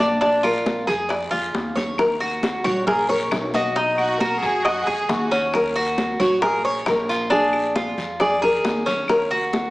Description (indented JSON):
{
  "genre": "latin, Cuban son and guajira",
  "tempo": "135 BPM",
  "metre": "4/4",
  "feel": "straight",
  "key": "Eb minor",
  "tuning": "A4 = 440 Hz",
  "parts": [
    { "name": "nylon-string guitar", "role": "melody", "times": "0.0-9.7 s", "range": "Gb4 to Eb5", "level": "-22 LUFS", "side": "equal", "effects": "none" },
    { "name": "Cuban tres", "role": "arpeggios", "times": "0.0-9.7 s", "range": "Db4 to D#5", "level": "-22 LUFS", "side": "equal", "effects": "none" },
    { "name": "upright bass", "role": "bass", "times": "0.0-9.7 s", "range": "Bb1 to F#2", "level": "-33 LUFS", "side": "equal", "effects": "none" },
    { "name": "bongos", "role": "percussion", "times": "0.0-9.7 s", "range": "none", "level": "-30 LUFS", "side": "left 2 dB", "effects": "none" },
    { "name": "congas", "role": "percussion", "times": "0.0-9.7 s", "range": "none", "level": "-30 LUFS", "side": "equal", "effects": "none" },
    { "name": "guiro", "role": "percussion", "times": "0.2-9.7 s", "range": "none", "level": "-36 LUFS", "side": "left 2 dB", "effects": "none" },
    { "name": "claves", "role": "percussion", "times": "0.4-9.3 s", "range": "none", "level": "-35 LUFS", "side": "left 2 dB", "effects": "none" },
    { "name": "warm studio violin section", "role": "second line", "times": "4.0-5.4 s", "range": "F#4 to Bb4", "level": "-24 LUFS", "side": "right 1 dB", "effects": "none" }
  ],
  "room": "wet large studio reverb, RT60 1.4 s",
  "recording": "small speaker sound",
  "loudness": "-18 LUFS",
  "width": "side -19 dB against mid",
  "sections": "0.0-2.0 A section; 2.0-9.7 B section",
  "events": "drum fill 1.5-2.0, 8.6-9.1",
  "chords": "0.2 Bb7; 2.0 Ebm7; 3.8 B6; 5.5 Ebm7; 7.3 Bb7; 9.1 Ebm7"
}